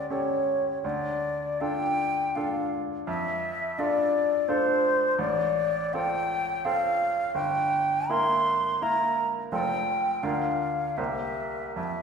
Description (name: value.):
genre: classical, romantic duo for flute and grand piano.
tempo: 73-87 BPM.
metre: 3/4.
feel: rubato.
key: D minor, F major from 5.2 s.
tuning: A4 = 439 Hz.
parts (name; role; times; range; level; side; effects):
mellow concert flute; melody; 0.0-12.0 s; C5 to C6; -26 LUFS; left 1 dB; none.
bright baby grand piano; accompaniment; 0.0-12.0 s; F1 to C5; -30 LUFS; right 1 dB; none.
room: wet recital hall reverb, RT60 1.4 s.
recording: recorded in a church or concert hall.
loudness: -24 LUFS.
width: side -6 dB against mid.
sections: 0.0-12.0 A section.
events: none.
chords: 0.0 A7/D; 0.8 Dm; 3.1 Dm/F; 5.2 F/A; 7.3 Edim/G; 9.5 F; 10.2 Bb/D; 11.0 C7.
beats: 0.10 | 0.83 1.60 2.35 | 3.07 3.78 4.48 | 5.18 5.93 6.65 | 7.35 8.10 8.82 | 9.53 10.24 10.98 | 11.77.